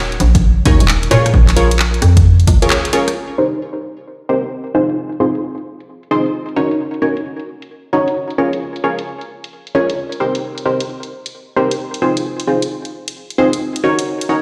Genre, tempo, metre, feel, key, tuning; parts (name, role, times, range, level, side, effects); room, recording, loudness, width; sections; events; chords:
UK garage, two-step garage; 132 BPM; 4/4; swing 65% on 16ths; A4 = 440 Hz
hollow knocking FM bass; bass; 0.0-2.6 s; Eb1 to Bb2; -14 LUFS; equal; tube saturation
garage drum kit; drums; 0.1-14.3 s; crash cymbal, handclaps, hi-hat, rim click; -23 LUFS; equal; low-pass filter on hats, low-pass filter on snare, low-pass filter on cymbals
electronic kick drum; drums; 0.3-2.6 s; -15 LUFS; equal; overdrive
punchy chord stab; stabs; 0.7-14.4 s; C4 to Db5; -19 LUFS; equal; chorus, cassette tape, delay
moderate plate reverb, RT60 1.7 s; played on a big sound system in a bare room, stone room reverb; -15 LUFS; mono
0.0-3.2 A section; 3.2-14.4 B section
band accent 2.7; filter sweep on drum 3.2-14.4; filter sweep on synth stab 3.2-14.4
0.0 Ebm7; 1.1 Bbm7; 3.2 Cm7; 4.7 Fm7; 6.8 Ebm7; 8.4 Bbm7; 10.4 Cm7; 12.0 Fm7